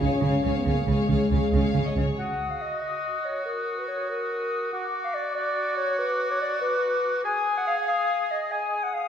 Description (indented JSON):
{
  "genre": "cinematic",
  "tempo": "95 BPM (dotted quarters)",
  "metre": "6/8",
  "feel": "straight",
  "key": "F# major",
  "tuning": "A4 = 440 Hz",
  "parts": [
    { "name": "warm symphonic violin section", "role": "melody", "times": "0.0-2.0 s", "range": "C#5 to E#5", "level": "-34 LUFS", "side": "left 2 dB", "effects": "none" },
    { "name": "dark symphonic violin section", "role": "second line", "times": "0.0-2.2 s", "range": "C#5", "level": "-35 LUFS", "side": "left 1 dB", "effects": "none" },
    { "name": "warm symphonic viola section", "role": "accompaniment", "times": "0.0-2.2 s", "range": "G#4", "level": "-33 LUFS", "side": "right 1 dB", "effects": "none" },
    { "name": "dark French horn section", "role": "sustained chords", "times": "0.0-1.9 s", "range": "G#3 to C#4", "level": "-27 LUFS", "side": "left 3 dB", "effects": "none" },
    { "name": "warm symphonic cello section", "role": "bass", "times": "0.0-2.0 s", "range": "C#3", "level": "-28 LUFS", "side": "right 2 dB", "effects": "none" },
    { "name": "warm symphonic double bass section", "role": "bass", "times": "0.0-2.0 s", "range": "C#2", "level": "-26 LUFS", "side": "right 3 dB", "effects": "none" },
    { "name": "clear oboe", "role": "second line", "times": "2.2-8.8 s", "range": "F#4 to G#4", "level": "-31 LUFS", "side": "right 2 dB", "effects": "none" },
    { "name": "dark clarinet", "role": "second line", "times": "2.2-9.1 s", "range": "A#4 to G#5", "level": "-27 LUFS", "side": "left 1 dB", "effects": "none" },
    { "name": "flute section", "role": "second line", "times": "2.2-9.1 s", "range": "D6 to D#6", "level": "-32 LUFS", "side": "left 3 dB", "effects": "none" }
  ],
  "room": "wet recital hall reverb, RT60 1.4 s",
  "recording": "heard from further back in the room",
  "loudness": "-23 LUFS",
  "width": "side -8 dB against mid",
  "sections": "0.0-2.2 A section; 2.2-9.1 A section",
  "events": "none",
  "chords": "0.0 C#; 2.2 F#6; 4.7 Bm/F#; 7.2 G#5"
}